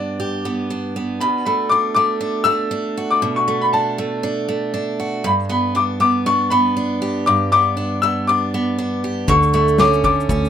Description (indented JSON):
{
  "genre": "acoustic pop",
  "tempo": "119 BPM",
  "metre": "4/4",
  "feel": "swing 60% on 16ths",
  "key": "B minor",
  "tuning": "A4 = 440 Hz",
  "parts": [
    { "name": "bright upright piano", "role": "melody", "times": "0.0-10.5 s", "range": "D5 to E6", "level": "-18 LUFS", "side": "left 3 dB", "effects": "none" },
    { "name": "picked steel-string acoustic guitar", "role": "accompaniment", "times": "0.0-10.5 s", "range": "G2 to G4", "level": "-20 LUFS", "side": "right 3 dB", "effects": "none" },
    { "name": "vintage muted fingered electric bass", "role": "bass", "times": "9.3-10.5 s", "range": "D2", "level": "-20 LUFS", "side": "equal", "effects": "none" },
    { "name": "loose indie drum kit", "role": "drums", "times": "9.3-10.5 s", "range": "kick drum, shaker, snare drum", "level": "-22 LUFS", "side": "left 1 dB", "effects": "none" }
  ],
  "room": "light reverb",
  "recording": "minimal, uncompressed stereo recording",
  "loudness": "-16 LUFS",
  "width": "side -9 dB against mid",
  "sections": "0.0-1.2 A section; 1.2-10.5 B section",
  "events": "break 0.0-1.2",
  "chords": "0.0 G; 1.2 Bm7; 5.2 G; 9.3 Dmaj7(no3)"
}